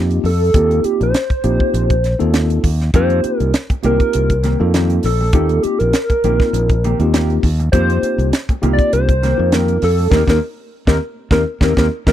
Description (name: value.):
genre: electric jazz fusion.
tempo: 100 BPM.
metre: 4/4.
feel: swing 54% on 16ths.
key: F mixolydian.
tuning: A4 = 441 Hz.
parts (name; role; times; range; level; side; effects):
mellow tine electric piano; accompaniment; 0.0-12.1 s; Bb3 to Bb4; -20 LUFS; left 2 dB; medium stereo tremolo.
modern bright fingered electric bass; bass; 0.0-12.1 s; Bb1 to F2; -16 LUFS; equal; none.
tight funk drum kit; drums; 0.1-12.1 s; hi-hat, kick drum, snare drum; -17 LUFS; equal; none.
hollow square lead; melody; 0.3-12.1 s; G4 to D5; -18 LUFS; equal; chorus.
mellow electric guitar; stabs; 2.9-12.1 s; Eb3 to G4; -23 LUFS; left 1 dB; wide subtle chorus.
room: small room ambience.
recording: dry, close 1970s-style studio recording.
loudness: -13 LUFS.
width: side -11 dB against mid.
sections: 0.0-12.1 A section.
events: band accent 10.1-12.1; drum fill 11.9.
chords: 0.0 F9sus4; 5.3 Eb6; 7.7 F9sus4; 10.1 Eb6.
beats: | 0.55 1.15 1.75 2.35 | 2.95 3.55 4.15 4.75 | 5.35 5.95 6.54 7.14 | 7.74 8.34 8.93 9.53 | 10.13 10.72 11.32 11.92.